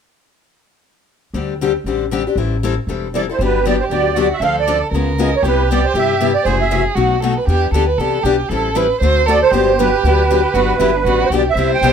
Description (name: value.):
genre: acoustic string swing (jazz manouche).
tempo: 235 BPM.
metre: 4/4.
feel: swing 57% on 8ths.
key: G major.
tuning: A4 = 441 Hz.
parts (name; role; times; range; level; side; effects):
picked steel-string acoustic guitar; accompaniment; 1.3-11.9 s; B2 to A4; -18 LUFS; left 8 dB; none.
upright bass; bass; 1.3-11.9 s; E1 to G2; -20 LUFS; equal; none.
musette accordion; melody; 3.2-6.8, 9.3-11.9 s; B4 to G5; -16 LUFS; right 7 dB; none.
warm violin; second line; 3.4-11.9 s; D4 to C5; -19 LUFS; right 5 dB; none.
room: light reverb.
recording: minimal, uncompressed stereo recording.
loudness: -13 LUFS.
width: side -7 dB against mid.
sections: 1.3-3.4 A section; 3.4-11.6 B section.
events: none.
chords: 1.3 D7sus4; 2.4 Am7; 3.4 Gmaj7; 4.4 Dm7; 4.9 C#6; 5.4 Cmaj7; 6.5 F#m7b5; 7.0 B7; 7.5 Em7; 8.5 Am7; 9.0 D7; 9.5 Gmaj7.